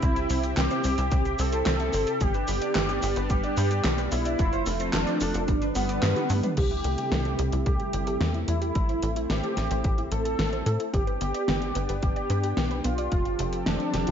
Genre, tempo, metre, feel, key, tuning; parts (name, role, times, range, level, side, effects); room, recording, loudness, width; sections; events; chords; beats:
synthwave; 110 BPM; 4/4; straight; C major; A4 = 445 Hz
wide unison lead; melody; 0.0-14.1 s; B3 to A4; -29 LUFS; equal; ensemble chorus, ping-pong delay
lush unison pad; sustained chords; 0.0-14.1 s; C3 to A4; -33 LUFS; equal; chorus, sidechain pumping
wide unison pluck; arpeggios; 0.0-14.1 s; A3 to E5; -36 LUFS; right 3 dB; tape echo
mellow electric guitar; riff; 0.0-6.5 s; G3 to C5; -35 LUFS; right 1 dB; lush chorus, low-pass filter, tape echo
tight sequencer bass; bass; 0.0-14.1 s; F1 to A2; -28 LUFS; equal
electronic kick drum; drums; 0.0-13.2 s; -26 LUFS; equal; studio reverb
pop drum kit; drums; 0.0-14.1 s; crash cymbal, handclaps, hi-hat, shaker, snare drum, toms; -31 LUFS; equal; studio reverb, gated reverb
light reverb, digital ambience; nothing above 7.6 kHz; -24 LUFS; side -8 dB against mid
0.0-6.6 A section; 6.6-14.1 B section
drum fill 6.2-6.6
0.0 C; 2.2 G; 4.4 F; 5.5 G; 6.6 C6; 8.8 Am; 10.9 G; 13.1 Fadd9
| 0.03 0.57 1.12 1.66 | 2.21 2.75 3.30 3.85 | 4.39 4.94 5.48 6.03 | 6.57 7.12 7.66 8.21 | 8.75 9.30 9.85 10.39 | 10.94 11.48 12.03 12.57 | 13.12 13.66